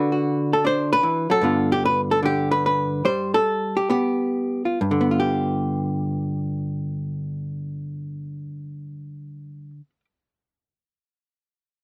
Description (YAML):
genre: solo jazz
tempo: 129-152 BPM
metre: 4/4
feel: swing 66% on 8ths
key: G mixolydian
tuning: A4 = 439 Hz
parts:
  - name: hollow-body jazz guitar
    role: solo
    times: 0.0-10.0 s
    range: G2 to C5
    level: -23 LUFS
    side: equal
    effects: none
room: light reverb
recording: dry, close 1970s-style studio recording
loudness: -22 LUFS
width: mono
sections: 0.0-4.8 A section; 4.8-8.5 B section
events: slowing down 1.4-4.8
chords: 0.0 D; 1.4 G7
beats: 0.26 0.65 1.04 | 1.44 1.83 2.23 2.64 | 3.05 3.47 3.90 4.34 | 4.80 5.26 5.73 6.19 | 6.66 7.12 7.58 8.05